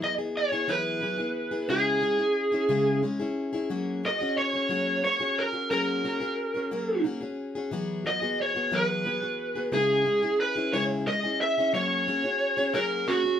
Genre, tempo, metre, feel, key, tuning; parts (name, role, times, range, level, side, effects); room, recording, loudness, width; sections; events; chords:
rock; 60 BPM (dotted quarters); 6/8; straight; A4 = 435 Hz
lead guitar through a small cranked amp; melody; 0.0-13.4 s; F#4 to E5; -25 LUFS; right 1 dB; overdrive
picked plugged-in steel-string acoustic guitar; accompaniment; 0.0-13.4 s; C#3 to G#4; -30 LUFS; left 3 dB
wet studio reverb, RT60 0.5 s; band playing live in one room; -24 LUFS; side -9 dB against mid
0.0-13.4 A section
0.0 Eadd9; 1.7 C#m; 3.7 F#add9; 7.7 Eadd9; 9.7 C#m; 11.7 F#add9